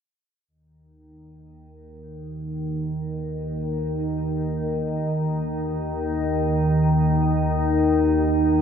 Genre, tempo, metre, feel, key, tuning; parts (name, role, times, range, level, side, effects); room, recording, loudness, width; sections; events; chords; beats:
ambient; free time; A4 = 439 Hz
organ-like drone; drone; 2.0-8.6 s; Eb2 to Eb3; -21 LUFS; equal; ensemble chorus, built-in reverb, phaser
wet lush hall reverb, RT60 3.0 s; dreamy mix soaked in reverb; -21 LUFS; side -7 dB against mid
0.5-8.6 A section
filter sweep on synth drone 0.5-8.6
free time